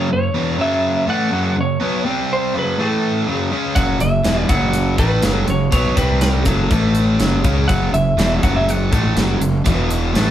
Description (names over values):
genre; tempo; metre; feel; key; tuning
hard rock; 122 BPM; 4/4; straight; F# minor; A4 = 440 Hz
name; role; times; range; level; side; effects
lightly driven lead guitar; melody; 0.0-10.3 s; A4 to F#5; -22 LUFS; right 1 dB; none
cranked stack guitar; riff; 0.0-10.3 s; E2 to C#4; -21 LUFS; right 4 dB; overdrive
sludgy distorted guitar; riff; 0.0-10.3 s; E2 to C#4; -21 LUFS; left 5 dB; overdrive
fuzz fingered electric bass; bass; 3.8-10.3 s; E1 to C#2; -20 LUFS; equal; overdrive
tight metal drum kit; drums; 3.8-10.3 s; hi-hat, kick drum, snare drum; -20 LUFS; equal; none
room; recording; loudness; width
moderate small room reverb, RT60 0.6 s; band playing live in one room; -15 LUFS; side -11 dB against mid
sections
0.0-10.3 A section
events
none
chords
0.0 F#m; 2.0 C5; 2.5 F#5; 2.8 A5; 3.3 F#m; 6.0 C5; 6.5 F#m; 6.7 A5; 7.2 F#m; 9.7 E5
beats
0.33 0.82 1.31 | 1.80 2.29 2.78 3.27 | 3.76 4.25 4.74 5.24 | 5.73 6.22 6.71 7.20 | 7.69 8.18 8.68 9.17 | 9.66 10.15